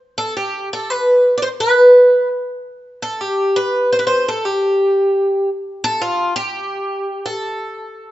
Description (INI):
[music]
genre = fado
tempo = 85 BPM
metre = 4/4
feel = rubato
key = unclear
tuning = A4 = 440 Hz
[part]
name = picked twelve-string acoustic guitar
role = solo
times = 0.2-8.1 s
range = F4 to D5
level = -14 LUFS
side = equal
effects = none
[sound]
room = light reverb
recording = nothing above 7.8 kHz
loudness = -14 LUFS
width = side -15 dB against mid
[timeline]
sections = 0.0-8.1 A section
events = none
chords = none